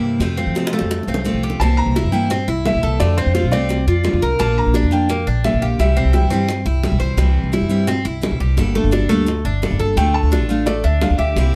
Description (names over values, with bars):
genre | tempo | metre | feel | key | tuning
latin, Cuban son and guajira | 172 BPM | 4/4 | straight | unclear | A4 = 440 Hz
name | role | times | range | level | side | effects
picked steel-string acoustic guitar | accompaniment | 0.0-11.6 s | C3 to A4 | -24 LUFS | equal | none
Cuban tres | arpeggios | 0.0-11.5 s | A3 to C5 | -25 LUFS | equal | none
upright bass | bass | 0.0-11.6 s | G1 to F3 | -20 LUFS | equal | none
bongos | percussion | 0.2-11.5 s | none | -28 LUFS | equal | none
felt-muted upright piano | melody | 1.6-7.0, 10.0-11.6 s | C5 to Bb5 | -25 LUFS | equal | none
room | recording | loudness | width
light reverb | none | -18 LUFS | mono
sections
0.0-1.6 A section; 1.6-11.6 B section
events
drum fill 0.6-1.6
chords
0.2 F; 1.6 C7; 3.0 F6; 4.4 Bb; 5.8 C; 8.6 Gmadd9; 10.0 Dm